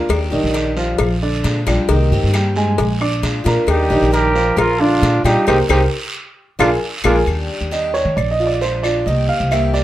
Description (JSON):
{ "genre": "latin, Cuban son and guajira", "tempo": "134 BPM", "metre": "4/4", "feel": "straight", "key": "Eb major", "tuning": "A4 = 440 Hz", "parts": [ { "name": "picked steel-string acoustic guitar", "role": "accompaniment", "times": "0.0-9.8 s", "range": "C3 to G4", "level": "-23 LUFS", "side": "left 3 dB", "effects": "none" }, { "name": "warm grand piano", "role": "arpeggios", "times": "0.0-9.8 s", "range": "D3 to D6", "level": "-19 LUFS", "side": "right 2 dB", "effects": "slapback echo" }, { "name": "upright bass", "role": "bass", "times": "0.1-9.8 s", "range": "Bb1 to Eb3", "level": "-18 LUFS", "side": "equal", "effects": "none" }, { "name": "claves", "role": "percussion", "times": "0.1-9.7 s", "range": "none", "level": "-26 LUFS", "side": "left 6 dB", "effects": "none" }, { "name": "cowbell", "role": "percussion", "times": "0.1-7.2 s", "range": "none", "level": "-23 LUFS", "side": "left 5 dB", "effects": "none" }, { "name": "guiro", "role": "percussion", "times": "0.1-9.8 s", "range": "none", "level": "-29 LUFS", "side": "right 2 dB", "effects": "none" }, { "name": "trumpet with bucket mute", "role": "melody", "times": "3.7-7.2 s", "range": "F4 to Bb4", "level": "-18 LUFS", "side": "right 2 dB", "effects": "none" }, { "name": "growling trumpet", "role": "second line", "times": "3.7-7.2 s", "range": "D4 to G4", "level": "-23 LUFS", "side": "left 2 dB", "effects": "none" } ], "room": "moderate studio reverb, RT60 0.7 s", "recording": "dark, warm production", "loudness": "-14 LUFS", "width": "side -14 dB against mid", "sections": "0.0-7.3 A section; 7.3-9.8 B section", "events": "band accent 5.5-7.3; drum fill 6.6-7.3; grand piano solo 7.3-9.8", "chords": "0.1 Ebmaj7; 1.0 Bb7; 1.9 Cm7; 2.8 Bb7; 3.7 Ebmaj7; 4.6 Bb7; 5.5 Cm7; 6.4 Bb7; 7.3 Ebmaj7; 8.2 Bb7; 9.1 Cm7" }